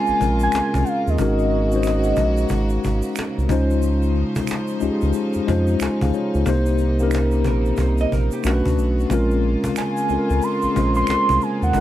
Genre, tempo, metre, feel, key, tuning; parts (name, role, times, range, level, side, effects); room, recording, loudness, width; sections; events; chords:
R&B, neo-soul; 91 BPM; 4/4; swing 64% on 16ths; Bb minor; A4 = 442 Hz
warm velvety synth lead; melody; 0.0-3.5, 9.8-11.8 s; Eb5 to C6; -22 LUFS; right 2 dB; chorus
mellow tine electric piano; accompaniment; 0.0-11.8 s; Ab3 to Ab5; -21 LUFS; left 3 dB; auto-pan
rich studio string section; sustained chords; 0.0-11.8 s; C3 to C5; -31 LUFS; right 2 dB
round analog bass; bass; 0.1-11.8 s; Ab1 to F2; -21 LUFS; right 1 dB
egg shaker and finger snaps; percussion; 0.1-11.8 s; -37 LUFS; right 9 dB
cajon; drums; 0.2-11.8 s; -28 LUFS; right 1 dB
hollow-body jazz guitar; second line; 7.5-8.6 s; G4 to Eb5; -29 LUFS; right 8 dB
light reverb; -17 LUFS; side -13 dB against mid
0.0-11.8 A section
0.0 Bbm9; 1.2 Ab9sus4; 3.5 Dbmaj9; 6.5 Cm7; 8.4 Bm9; 9.1 Bbm9